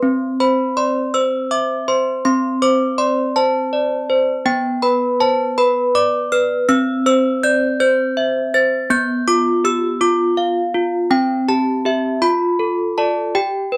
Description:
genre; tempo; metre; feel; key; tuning
classical, lullaby for handbells; 54 BPM (dotted quarters); 6/8; straight; C major; A4 = 441 Hz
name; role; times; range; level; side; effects
desk bells; solo; 0.0-13.8 s; B3 to A6; -17 LUFS; equal; none
room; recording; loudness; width
light reverb; dark, warm production; -17 LUFS; mono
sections
0.0-13.8 A section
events
none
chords
0.0 C; 2.3 D5/C; 4.5 Bm7b5; 6.7 C; 8.9 G7/B; 11.1 C; 12.2 Dm/F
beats
| 0.03 1.14 | 2.25 3.36 | 4.47 5.58 | 6.68 7.79 | 8.90 10.00 | 11.12 12.23 | 13.35

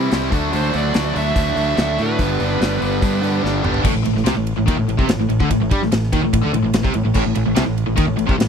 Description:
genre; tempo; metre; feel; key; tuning
classic rock; 145 BPM; 4/4; straight; A dorian; A4 = 441 Hz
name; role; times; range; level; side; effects
cranked stack guitar; riff; 0.0-8.5 s; G2 to G4; -22 LUFS; left 11 dB; overdrive
crunchy overdriven guitar; riff; 0.0-8.5 s; G2 to E4; -22 LUFS; right 10 dB; none
growling fingered electric bass; bass; 0.0-8.5 s; G1 to A2; -23 LUFS; equal; overdrive
big rock drum kit; drums; 0.1-8.5 s; crash cymbal, hi-hat, kick drum, ride cymbal, snare drum, toms; -21 LUFS; left 1 dB; none
dark smooth lead guitar; melody; 0.6-3.4 s; B4 to E5; -24 LUFS; right 4 dB; overdrive
crunchy overdriven guitar; riff; 3.8-8.5 s; A2 to G3; -24 LUFS; equal; none
room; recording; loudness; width
little or no reverb; dry, close 1970s-style studio recording; -16 LUFS; side -7 dB against mid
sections
0.0-3.9 A section; 3.9-8.5 B section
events
drum fill 3.4-3.9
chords
0.3 D; 2.2 G; 3.9 Am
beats
0.12 | 0.53 0.94 1.36 1.78 | 2.19 2.61 3.02 3.44 | 3.85 4.26 4.68 5.09 | 5.50 5.92 6.33 6.74 | 7.15 7.57 7.98 8.39

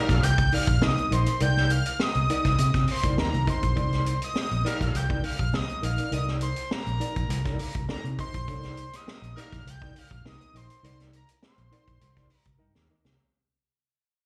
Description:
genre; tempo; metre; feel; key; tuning
funk; 102 BPM; 4/4; straight; C minor; A4 = 444 Hz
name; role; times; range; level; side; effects
fat analog lead; melody; 0.0-12.9 s; Bb5 to G6; -33 LUFS; equal; chorus, slapback echo
clear horn section; second line; 0.0-0.3, 4.6-5.0, 9.4-9.6 s; G3 to Bb4; -36 LUFS; equal; slapback echo
mellow electric guitar; accompaniment; 0.0-13.1 s; Eb4 to Eb5; -36 LUFS; equal; tremolo, slapback echo
vintage muted fingered electric bass; bass; 0.1-13.2 s; Bb1 to C3; -29 LUFS; equal; none
vintage drum kit; drums; 0.1-13.2 s; hi-hat, kick drum, snare drum; -32 LUFS; equal; none
room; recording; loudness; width
little or no reverb; live gig heard through the venue's PA, club reverb; -26 LUFS; mono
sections
0.0-13.2 A section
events
fade-out 0.0-13.2; drum fill 12.6-13.2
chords
0.0 Cm9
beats
0.22 0.81 | 1.40 1.99 2.58 3.17 | 3.76 4.35 4.94 5.53 | 6.12 6.71 7.30 7.89 | 8.48 9.07 9.66 10.25 | 10.84 11.42 12.01 12.60

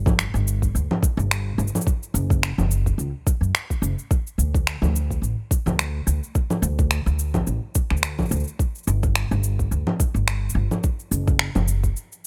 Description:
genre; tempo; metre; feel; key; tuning
folktronica; 107 BPM; 4/4; swing 56% on 16ths; unclear; A4 = 441 Hz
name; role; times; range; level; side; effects
upright bass; bass; 0.0-11.9 s; F#1 to F#2; -25 LUFS; equal; tube saturation
electronic congas, cabasa and finger snaps; drums; 0.1-12.2 s; none; -27 LUFS; equal; overdrive
electronic kick drum; drums; 0.1-11.9 s; none; -24 LUFS; equal; none
room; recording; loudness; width
little or no reverb; none; -23 LUFS; mono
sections
0.0-12.3 A section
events
break 12.0-12.3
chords
none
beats
0.18 0.74 1.30 | 1.86 2.42 2.98 3.54 | 4.11 4.67 5.23 5.79 | 6.35 6.91 7.47 8.03 | 8.59 9.15 9.71 10.27 | 10.84 11.40 11.96

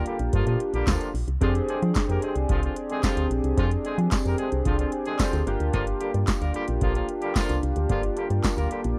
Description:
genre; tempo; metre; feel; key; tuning
early-eighties boogie funk; 111 BPM; 4/4; straight; unclear; A4 = 443 Hz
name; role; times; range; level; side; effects
clear horn section; second line; 0.0-8.8 s; D3 to Bb4; -34 LUFS; equal; none
chorused polysynth; accompaniment; 0.0-9.0 s; Bb3 to Ab4; -31 LUFS; equal; none
woody FM bass; bass; 0.0-8.9 s; G1 to F3; -28 LUFS; equal; none
electro analog drum machine; drums; 0.1-9.0 s; handclaps, hi-hat, kick drum, snare drum; -30 LUFS; equal; none
tambourine; percussion; 0.9-8.6 s; none; -44 LUFS; equal; none
room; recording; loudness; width
little or no reverb; dry, close 1970s-style studio recording; -25 LUFS; mono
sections
0.0-9.0 A section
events
none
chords
0.0 Gm7; 1.4 Fm69; 5.5 Gm7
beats
0.33 0.87 | 1.41 1.95 2.49 3.03 | 3.58 4.12 4.66 5.20 | 5.74 6.28 6.82 7.36 | 7.90 8.44 8.98

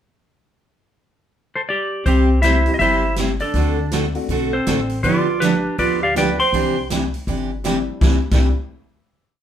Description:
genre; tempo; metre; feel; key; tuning
country, western swing; 161 BPM; 4/4; swing 63% on 8ths; C major; A4 = 440 Hz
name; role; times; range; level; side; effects
clean lap steel guitar; melody; 1.6-6.9 s; G4 to C6; -20 LUFS; left 1 dB; none
breathy clarinet; second line; 2.1-6.9 s; C4 to C5; -22 LUFS; right 3 dB; none
picked steel-string acoustic guitar; accompaniment; 2.1-8.5 s; C3 to A4; -22 LUFS; right 1 dB; none
upright bass; bass; 2.1-8.5 s; G1 to D2; -21 LUFS; left 1 dB; none
vintage drum kit; drums; 2.1-8.4 s; crash cymbal, hi-hat, kick drum, snare drum; -24 LUFS; equal; none
warm upright piano; accompaniment; 2.7-8.5 s; G3 to G4; -28 LUFS; left 2 dB; none
room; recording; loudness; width
moderate studio ambience, RT60 0.5 s; band playing live in one room; -16 LUFS; side -10 dB against mid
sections
0.6-2.1 pickup bar; 2.1-8.0 A section; 8.0-9.4 final chord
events
none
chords
0.6 G5; 2.1 C; 3.6 D7; 5.0 G7; 6.5 Cadd9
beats
| 0.58 0.95 1.32 1.69 | 2.06 2.44 2.81 3.18 | 3.56 3.93 4.30 4.67 | 5.04 5.42 5.79 6.16 | 6.53 6.91 7.28 7.65 | 8.02 8.39

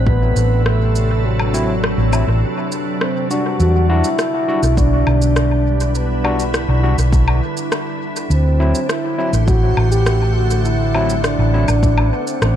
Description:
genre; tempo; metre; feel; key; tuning
ambient dub; 102 BPM; 4/4; straight; E minor; A4 = 440 Hz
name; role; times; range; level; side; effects
trombone with bucket mute; melody; 0.0-12.6 s; F#3 to G4; -21 LUFS; equal; dub echo
soft additive organ-like pad; sustained chords; 0.0-12.6 s; C3 to F#5; -23 LUFS; right 1 dB; ensemble chorus, built-in reverb
hollow-body short-scale fingered electric bass; bass; 0.0-12.6 s; A1 to E2; -15 LUFS; equal; none
drifting glass-harmonics texture; texture; 0.0-3.6 s; B4; -32 LUFS; right 6 dB; chorus, built-in reverb
electronic kick drum; drums; 0.1-0.2, 4.8-11.9 s; none; -18 LUFS; equal; overdrive
electronic shaker, rim click and woodblock; drums; 0.4-12.5 s; none; -25 LUFS; left 1 dB; overdrive, dub echo
overdriven tine electric piano; stabs; 1.5-11.7 s; F#3 to F#4; -25 LUFS; left 2 dB; dub echo
room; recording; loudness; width
light reverb; none; -14 LUFS; side -10 dB against mid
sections
0.0-3.6 A section; 3.6-12.6 B section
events
break 2.4-3.6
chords
0.0 D7; 3.6 Em7; 8.3 D7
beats
0.07 0.66 | 1.24 1.83 2.42 3.01 | 3.60 4.18 4.77 5.36 | 5.95 6.54 7.13 7.71 | 8.30 8.89 9.48 10.07 | 10.66 11.24 11.83 12.42

